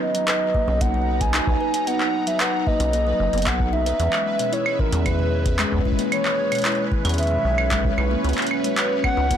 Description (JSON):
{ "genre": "IDM", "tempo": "113 BPM", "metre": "4/4", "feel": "straight", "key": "unclear", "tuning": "A4 = 441 Hz", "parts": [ { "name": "warbly nostalgic lead", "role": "melody", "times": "0.0-9.4 s", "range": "A#4 to G#5", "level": "-24 LUFS", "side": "equal", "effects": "chorus, tape echo" }, { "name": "phased analog pad", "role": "sustained chords", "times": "0.0-9.4 s", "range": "F#3 to A#5", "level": "-27 LUFS", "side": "right 1 dB", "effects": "phaser, chorus, sidechain pumping" }, { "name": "pulsing gated texture", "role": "texture", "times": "0.0-9.4 s", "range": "B4", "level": "-34 LUFS", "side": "right 3 dB", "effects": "chorus, built-in reverb" }, { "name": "kalimba", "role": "arpeggios", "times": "0.1-9.4 s", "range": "B2 to C#5", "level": "-29 LUFS", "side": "left 4 dB", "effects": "ping-pong delay" }, { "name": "booming analog drum machine", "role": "drums", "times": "0.1-9.4 s", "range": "claves, handclaps, hi-hat", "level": "-26 LUFS", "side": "equal", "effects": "ping-pong delay" }, { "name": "electronic kick drum", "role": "drums", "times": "0.5-9.4 s", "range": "none", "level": "-24 LUFS", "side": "equal", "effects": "none" }, { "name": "deep acid bass", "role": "bass", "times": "0.7-9.4 s", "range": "F#1 to E2", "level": "-23 LUFS", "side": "equal", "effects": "none" } ], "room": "light reverb", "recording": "blown-out, overdriven recording, overdrive", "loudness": "-19 LUFS", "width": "side -9 dB against mid", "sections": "0.0-9.4 A section", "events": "none", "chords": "0.0 Bmaj7; 4.0 E6; 8.2 C#7sus4", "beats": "0.28 0.81 1.34 | 1.87 2.40 2.93 3.46 | 4.00 4.53 5.06 5.59 | 6.12 6.65 7.18 7.71 | 8.24 8.78 9.31" }